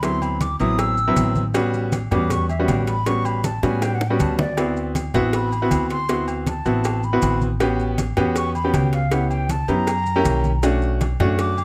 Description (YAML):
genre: Afro-Cuban jazz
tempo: 159 BPM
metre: 4/4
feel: straight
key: A mixolydian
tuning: A4 = 439 Hz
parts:
  - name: breathy mellow silver concert flute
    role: second line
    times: 0.0-11.6 s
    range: D5 to E6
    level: -28 LUFS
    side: equal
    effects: none
  - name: clear baby grand piano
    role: accompaniment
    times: 0.0-11.5 s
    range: F#3 to G4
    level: -25 LUFS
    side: equal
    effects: none
  - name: upright bass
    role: bass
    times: 0.0-11.6 s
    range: A1 to A2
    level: -26 LUFS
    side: equal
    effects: none
  - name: agogo bells and timbales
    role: percussion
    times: 0.0-11.6 s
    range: none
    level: -36 LUFS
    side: equal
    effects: none
  - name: congas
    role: percussion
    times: 0.0-11.6 s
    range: none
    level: -29 LUFS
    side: equal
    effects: none
  - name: cowbell and bongos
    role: percussion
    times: 0.0-11.6 s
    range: none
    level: -32 LUFS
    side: equal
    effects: none
  - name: maracas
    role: percussion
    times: 0.0-11.6 s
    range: none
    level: -42 LUFS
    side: equal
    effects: none
room: light reverb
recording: close, detailed microphones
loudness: -21 LUFS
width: mono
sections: 0.0-11.6 A section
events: flute solo 0.0-11.6; drum fill 3.4-4.6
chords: 0.0 D13; 1.5 A13; 4.6 D13; 7.6 A13; 9.1 C#m7b5; 9.9 F#7b9; 10.6 Bm7